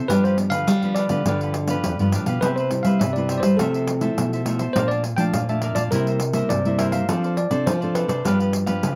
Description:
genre	samba and choro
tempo	103 BPM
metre	4/4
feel	straight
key	C major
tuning	A4 = 439 Hz
part	cavaquinho	accompaniment	0.0-9.0 s	D4 to A5	-33 LUFS	equal	none
part	nylon-string guitar	accompaniment	0.0-8.9 s	F2 to A4	-29 LUFS	equal	none
part	bell-like tine electric piano	melody	0.1-9.0 s	A4 to G5	-28 LUFS	equal	none
part	nylon-string guitar	bass	0.1-9.0 s	F2 to G3	-25 LUFS	equal	none
part	pandeiro	percussion	0.1-9.0 s	none	-29 LUFS	equal	none
room	small room ambience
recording	dry, close 1970s-style studio recording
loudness	-21 LUFS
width	mono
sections	0.0-9.0 A section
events	none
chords	0.1 G7; 2.4 Cmaj7; 3.6 Fmaj7/C; 4.8 Bbmaj7; 5.9 C7; 7.1 F6; 8.2 G7

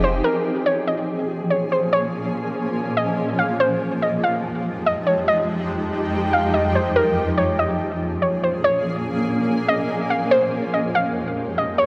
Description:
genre	hip hop, atmospheric cloud-rap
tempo	143 BPM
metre	4/4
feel	half-time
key	Bb dorian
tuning	A4 = 440 Hz
part	soft round pluck	melody	0.0-11.9 s	Bb4 to F5	-23 LUFS	equal	chorus, low-pass filter, digital delay
part	shimmering ambient pad	sustained chords	0.0-11.9 s	F2 to Ab4	-25 LUFS	equal	chorus, built-in reverb
room	moderate lush hall reverb, RT60 2.8 s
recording	none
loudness	-21 LUFS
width	mono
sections	0.2-11.9 A section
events	none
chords	0.2 Bbm7; 3.6 Fm7; 7.0 Bbm7; 10.3 Fm7

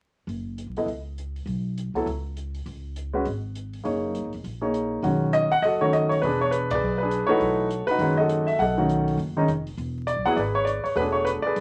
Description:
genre	jazz piano trio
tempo	202 BPM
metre	4/4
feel	swing 61% on 8ths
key	B mixolydian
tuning	A4 = 441 Hz
part	upright bass	bass	0.3-11.6 s	E1 to D#2	-34 LUFS	equal	none
part	open jazz drum kit	drums	0.3-11.6 s	hi-hat, kick drum, ride cymbal	-46 LUFS	equal	none
part	warm grand piano	melody	0.8-11.6 s	D#3 to F#5	-24 LUFS	equal	none
room	wet small room reverb, RT60 0.5 s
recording	vinyl crackle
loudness	-25 LUFS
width	mono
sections	0.3-5.0 A section; 5.0-11.6 B section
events	band accent 6.7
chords	0.3 F#sus4; 2.7 C#5; 3.8 F#add9; 5.0 B7; 6.2 E7; 7.4 B7; 9.8 E7

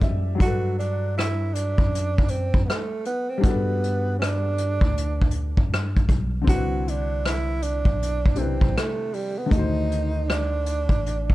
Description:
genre	lo-fi hip hop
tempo	79 BPM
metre	4/4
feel	swing 64% on 16ths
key	unclear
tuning	A4 = 440 Hz
part	felt-muted upright piano	accompaniment	0.0-11.3 s	C3 to G5	-31 LUFS	left 4 dB	none
part	mellow tine electric piano	bass	0.0-11.3 s	A1 to G2	-26 LUFS	equal	none
part	vintage brush drum kit	drums	0.0-11.3 s	hi-hat, kick drum, rim click	-22 LUFS	equal	none
part	breathy tenor saxophone	melody	0.4-11.3 s	G3 to F#4	-28 LUFS	right 3 dB	none
room	studio reverb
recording	dark, warm production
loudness	-21 LUFS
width	side -17 dB against mid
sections	0.4-11.3 A section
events	felt piano fill 0.0-0.4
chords	0.4 Gmaj7; 6.5 Cmaj9; 9.5 D7b9

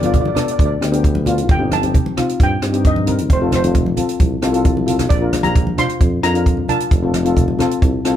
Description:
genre	calypso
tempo	133 BPM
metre	4/4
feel	straight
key	unclear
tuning	A4 = 440 Hz
part	steel pan	melody	0.0-8.0 s	C5 to C6	-22 LUFS	right 1 dB	plate reverb
part	steel pan	accompaniment	0.0-8.1 s	B3 to C5	-20 LUFS	left 4 dB	none
part	mellow tuba	bass	0.0-8.2 s	F1 to G2	-20 LUFS	equal	none
part	compact cocktail drum kit	drums	0.0-8.2 s	hi-hat, kick drum, rim click	-17 LUFS	right 1 dB	none
part	congas	percussion	0.0-7.7 s	none	-24 LUFS	right 1 dB	none
room	moderate small room reverb, RT60 0.5 s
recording	heard from further back in the room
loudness	-14 LUFS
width	side -11 dB against mid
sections	0.0-8.2 A section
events	drum fill 4.6-5.1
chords	0.0 G7; 1.5 Cm/G; 3.3 F; 5.1 Bb; 6.9 F

